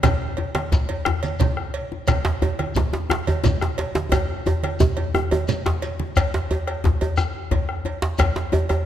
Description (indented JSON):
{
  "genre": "west african traditional, West African drum ensemble",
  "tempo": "118 BPM (dotted quarters)",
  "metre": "12/8",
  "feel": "straight",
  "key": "none",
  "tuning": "none",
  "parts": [
    { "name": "bombo", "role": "percussion", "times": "0.0-8.9 s", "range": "none", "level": "-25 LUFS", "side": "left 1 dB", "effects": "none" },
    { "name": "congas", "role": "percussion", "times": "0.0-6.2 s", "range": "none", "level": "-28 LUFS", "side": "right 5 dB", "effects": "none" },
    { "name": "cowbell", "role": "percussion", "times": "0.0-8.9 s", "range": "none", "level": "-31 LUFS", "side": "right 4 dB", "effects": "none" },
    { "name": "djembe", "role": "percussion", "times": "0.0-8.7 s", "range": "none", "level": "-27 LUFS", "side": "left 5 dB", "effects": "none" },
    { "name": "djembe", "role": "percussion", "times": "0.0-8.9 s", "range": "none", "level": "-23 LUFS", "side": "right 1 dB", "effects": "none" },
    { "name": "shekere", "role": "percussion", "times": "0.0-8.3 s", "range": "none", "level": "-30 LUFS", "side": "left 2 dB", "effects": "none" }
  ],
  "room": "wet concert hall reverb, RT60 1.8 s",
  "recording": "none",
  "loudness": "-20 LUFS",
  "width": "side -11 dB against mid",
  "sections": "0.0-6.2 A section; 6.2-8.9 B section",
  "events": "drum fill 4.1-6.2",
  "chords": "none",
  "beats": "| 0.03 0.54 1.06 1.57 | 2.08 2.59 3.10 3.62 | 4.12 4.63 5.14 5.65 | 6.16 6.67 7.18 7.68 | 8.19 8.70"
}